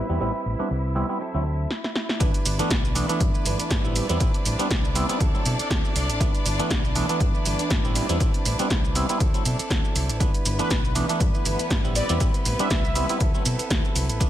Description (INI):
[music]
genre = filtered disco house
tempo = 120 BPM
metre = 4/4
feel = swing 55% on 16ths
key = G major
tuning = A4 = 441 Hz
[part]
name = clav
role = accompaniment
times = 0.0-14.3 s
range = E3 to E4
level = -28 LUFS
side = right 1 dB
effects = phaser, sidechain pumping, low-pass filter
[part]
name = warm studio violin section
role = sustained chords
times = 0.0-14.3 s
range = B3 to E5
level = -33 LUFS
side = left 2 dB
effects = sidechain pumping, low-pass filter
[part]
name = direct-recorded clean electric guitar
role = riff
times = 0.0-14.3 s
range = F#3 to B4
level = -33 LUFS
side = right 5 dB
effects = vintage 12-bit sampler grit, sidechain pumping, low-pass filter
[part]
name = fingered electric bass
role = bass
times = 0.1-14.3 s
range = G1 to B2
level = -27 LUFS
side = equal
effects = tube saturation, sidechain pumping, low-pass filter
[part]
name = punchy analog drum machine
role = drums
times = 1.7-14.3 s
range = hi-hat, shaker, snare drum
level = -28 LUFS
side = right 1 dB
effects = studio reverb
[part]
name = electronic kick drum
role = drums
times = 2.2-14.3 s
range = none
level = -24 LUFS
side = equal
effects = studio reverb
[part]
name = analog synth brass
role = melody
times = 10.6-13.3 s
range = B4 to E5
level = -31 LUFS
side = right 2 dB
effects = chorus, cassette tape, sidechain pumping, low-pass filter, ping-pong delay
[sound]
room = digital ambience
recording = none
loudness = -21 LUFS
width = side -12 dB against mid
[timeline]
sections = 0.0-2.2 A section; 2.2-14.3 B section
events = filter sweep 0.0-2.2; drum fill 1.7-2.2; drop 2.2-14.3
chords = 0.0 Am9; 1.2 D9; 2.2 G6; 4.0 Am9; 5.2 D9; 6.2 G6; 8.0 Am9; 9.2 D9; 10.2 G6; 12.0 Am9; 13.2 D9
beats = | 0.21 0.71 1.21 1.71 | 2.21 2.71 3.21 3.71 | 4.21 4.71 5.21 5.71 | 6.21 6.71 7.21 7.71 | 8.21 8.71 9.21 9.71 | 10.21 10.71 11.21 11.71 | 12.21 12.71 13.21 13.71 | 14.21